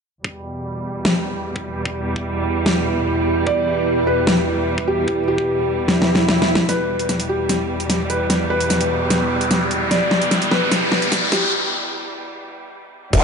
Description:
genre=heavy wobble dubstep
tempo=149 BPM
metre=4/4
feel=half-time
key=E minor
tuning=A4 = 440 Hz
part: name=clear studio string section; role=sustained chords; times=0.2-13.1 s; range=E2 to G3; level=-24 LUFS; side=right 1 dB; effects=sidechain pumping, low-pass filter
part: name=electronic kick drum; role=drums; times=0.2-5.5, 13.1-13.2 s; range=none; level=-22 LUFS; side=equal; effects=high-pass filter on kick, small room reverb
part: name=deep dark ambient pad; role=texture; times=1.8-11.5 s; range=E4 to E5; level=-26 LUFS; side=right 2 dB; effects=chorus, built-in reverb, sidechain pumping
part: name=dubstep drum kit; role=drums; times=1.1-13.2 s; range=crash cymbal, hi-hat, snare drum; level=-20 LUFS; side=left 1 dB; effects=small room reverb
part: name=felt-muted upright piano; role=melody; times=3.5-11.5 s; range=G4 to D5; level=-22 LUFS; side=equal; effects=ping-pong delay
part: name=swell, riser and impact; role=sound effects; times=6.0-13.2 s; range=none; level=-23 LUFS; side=equal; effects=none
part: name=growl bass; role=bass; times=13.1-13.2 s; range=E1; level=-15 LUFS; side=equal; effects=distortion, chorus, overdrive
room=moderate lush hall reverb, RT60 2.0 s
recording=high-pass filter, nothing above 10.5 kHz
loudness=-17 LUFS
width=side -6 dB against mid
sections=0.2-6.7 A section; 6.7-13.1 B section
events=filter sweep on string section 0.2-6.7; drum fill 5.9-6.7, 6.7-11.5; swell 6.0-6.7; build-up 6.7-13.1; riser 6.7-11.5; filter sweep 6.7-13.1; break 11.5-13.1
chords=0.2 Em

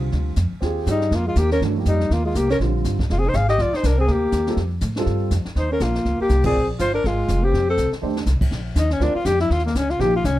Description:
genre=jazz, small-group swing and bop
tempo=243 BPM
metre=4/4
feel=swing 59% on 8ths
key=Bb mixolydian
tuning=A4 = 440 Hz
part: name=warm concert grand piano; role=accompaniment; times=0.0-10.1 s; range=D3 to D5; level=-26 LUFS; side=right 3 dB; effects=none
part: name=upright bass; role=bass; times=0.0-10.4 s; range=F1 to A2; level=-21 LUFS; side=equal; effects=none
part: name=jazz brush drum kit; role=drums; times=0.1-10.4 s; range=brushed snare drum, crash cymbal, hi-hat, kick drum, ride cymbal, snare drum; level=-28 LUFS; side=equal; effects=none
part: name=breathy alto saxophone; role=melody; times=0.9-10.4 s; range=Bb3 to F5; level=-22 LUFS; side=left 2 dB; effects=none
part: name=mellow tenor saxophone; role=second line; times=0.9-7.9 s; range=G3 to Ab4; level=-26 LUFS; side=right 2 dB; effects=none
room=little or no reverb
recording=dark, warm production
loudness=-18 LUFS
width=side -15 dB against mid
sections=0.0-8.5 A section; 8.5-10.4 B section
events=band accent 6.4; drum fill 8.0; alto saxophone solo 8.5-10.4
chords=0.0 Bbadd9 (rootless); 0.6 Ebadd9; 2.6 Bb9; 4.6 Fadd9; 5.6 Eb9; 6.5 Bb5; 7.5 F9; 8.5 Bbadd9; 9.5 Eb9

